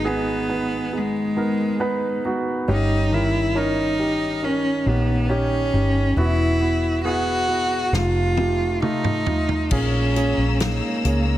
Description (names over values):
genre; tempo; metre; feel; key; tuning
pop ballad; 68 BPM; 4/4; straight; unclear; A4 = 442 Hz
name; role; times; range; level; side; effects
clear cello; melody; 0.0-11.4 s; G#3 to F#4; -23 LUFS; equal; none
warm concert grand piano; accompaniment; 0.0-11.4 s; G2 to B4; -25 LUFS; right 2 dB; none
vintage muted fingered electric bass; bass; 0.0-11.4 s; E1 to C#2; -23 LUFS; left 1 dB; none
natural country drum kit; drums; 7.9-11.3 s; crash cymbal, hi-hat, kick drum, snare drum, toms; -26 LUFS; equal; none
warm studio string section; sustained chords; 9.7-11.4 s; G#3 to E6; -30 LUFS; left 3 dB; none
room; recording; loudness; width
light reverb, small room ambience; none; -19 LUFS; side -13 dB against mid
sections
0.0-9.7 A section; 9.7-11.4 B section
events
drum fill 7.9-9.7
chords
0.0 G#m; 2.7 D#7/G; 6.2 Esus2; 7.9 F7; 9.7 A#m7b5